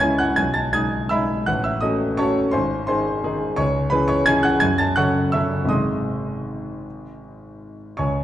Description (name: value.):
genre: classical, piano waltz.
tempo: 152-180 BPM.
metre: 3/4.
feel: rubato.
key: unclear.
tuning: A4 = 442 Hz.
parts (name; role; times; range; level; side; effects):
clear grand piano; solo; 0.0-8.2 s; G#1 to A6; -19 LUFS; equal; none.
room: wet recital hall reverb, RT60 1.5 s.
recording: dark, warm production.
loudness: -18 LUFS.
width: side -12 dB against mid.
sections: 0.0-8.2 A section.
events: none.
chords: 0.4 G#m/B; 1.5 F#m/A; 2.5 G#; 3.6 C#m; 4.6 F#m; 5.7 G#.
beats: 0.03 | 0.39 0.76 1.12 | 1.49 1.83 2.19 | 2.54 2.88 3.24 | 3.58 3.92 4.28 | 4.63 4.98 5.34 | 5.71 6.08 6.47 | 6.85 7.22 7.61 | 8.00.